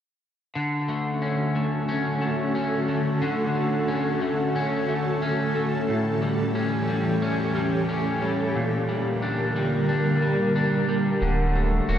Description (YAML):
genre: dream pop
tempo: 90 BPM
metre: 4/4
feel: straight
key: D major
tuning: A4 = 440 Hz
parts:
  - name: ethereal airy pad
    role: sustained chords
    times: 0.9-12.0 s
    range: D3 to C#6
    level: -25 LUFS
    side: right 1 dB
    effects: ensemble chorus, built-in reverb, tremolo
  - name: electric guitar at the edge of break-up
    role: arpeggios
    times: 0.6-12.0 s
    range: A2 to F#4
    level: -25 LUFS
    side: left 2 dB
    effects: wide subtle chorus, diffuse ambient delay
  - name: saturated sub bass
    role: bass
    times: 11.2-12.0 s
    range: D1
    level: -24 LUFS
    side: equal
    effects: none
room: wet cathedral reverb, RT60 5.7 s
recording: dreamy mix soaked in reverb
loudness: -22 LUFS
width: side -10 dB against mid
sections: 0.6-11.2 A section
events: none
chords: 0.6 Dmaj7; 5.9 A7; 8.6 Gm; 11.2 Dmaj7